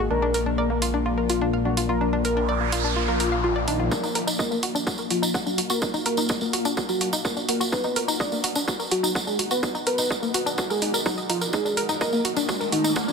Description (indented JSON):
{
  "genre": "melodic techno",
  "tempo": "126 BPM",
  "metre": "4/4",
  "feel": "straight",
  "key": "Eb harmonic minor",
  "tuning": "A4 = 441 Hz",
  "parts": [
    { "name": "deep dark ambient pad", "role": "sustained chords", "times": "0.0-13.1 s", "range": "F3 to F#5", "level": "-31 LUFS", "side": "left 4 dB", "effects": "chorus, built-in reverb, sidechain pumping" },
    { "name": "woody wave-folded pluck", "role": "arpeggios", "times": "0.0-13.1 s", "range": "Bb3 to Gb5", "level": "-28 LUFS", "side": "left 1 dB", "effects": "chorus, sidechain pumping, digital delay" },
    { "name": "swelling detuned saw bass", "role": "bass", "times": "0.0-3.9 s", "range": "Bb1", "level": "-28 LUFS", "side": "equal", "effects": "sidechain pumping" },
    { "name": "swarming drone", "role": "drone", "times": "0.0-4.0 s", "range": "Eb3 to Bb3", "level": "-45 LUFS", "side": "equal", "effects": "none" },
    { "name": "wide unison lead", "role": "melody", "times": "0.1-13.1 s", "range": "Eb4 to D5", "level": "-27 LUFS", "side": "equal", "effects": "sidechain pumping, ping-pong delay" },
    { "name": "house drum kit", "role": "drums", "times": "0.3-12.8 s", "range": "hi-hat, toms", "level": "-28 LUFS", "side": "right 3 dB", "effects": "overdrive, high-pass filter on hats, high-pass filter on toms, high-pass filter on room" },
    { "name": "noise sweep and riser", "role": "sound effects", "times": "2.2-3.9, 12.0-13.1 s", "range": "none", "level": "-31 LUFS", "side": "equal", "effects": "none" },
    { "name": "electronic kick drum", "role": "drums", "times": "3.9-13.1 s", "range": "none", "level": "-30 LUFS", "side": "equal", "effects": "overdrive, high-pass filter on kick, high-pass filter on room" },
    { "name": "tambourine", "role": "percussion", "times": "3.9-13.1 s", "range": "none", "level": "-30 LUFS", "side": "right 3 dB", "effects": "none" }
  ],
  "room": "moderate huge ambient reverb, RT60 5.0 s",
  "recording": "none",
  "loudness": "-22 LUFS",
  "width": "side -5 dB against mid",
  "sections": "0.0-3.9 A section; 3.9-13.1 B section",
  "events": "filter sweep on analog synth lead 0.0-3.9, 3.9-13.1; noise sweep 2.2-3.9; build-up 3.9-13.1; filter sweep on synth pluck 3.9-13.1; drum fill 11.5-13.1; riser 12.0-13.1",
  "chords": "0.1 Bb; 3.9 Ebmadd9; 7.7 B; 11.5 Absus2"
}